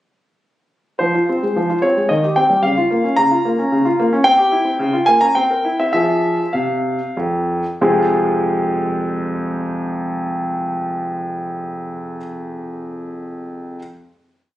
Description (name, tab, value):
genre	classical-period piano sonatina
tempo	93-113 BPM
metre	3/4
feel	rubato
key	F minor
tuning	A4 = 437 Hz
part	clear concert grand piano	solo	1.0-13.8 s	F2 to Bb5	-16 LUFS	equal	none
room	light reverb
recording	recorded on a phone in the room, studio reverb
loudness	-15 LUFS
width	side -14 dB against mid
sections	1.0-7.8 A section; 7.8-11.6 final chord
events	slowing down 3.4-7.8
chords	1.0 Fm; 2.1 Cm/Eb; 2.6 Bbm/Db; 4.2 C; 4.8 Bbm/Db; 5.4 C7; 5.9 Fm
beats	| 1.00 1.55 2.10 | 2.63 3.17 3.71 | 4.25 4.79 5.36 | 5.94 6.55 7.17 | 7.81 8.45 9.07 | 9.70 10.32 10.95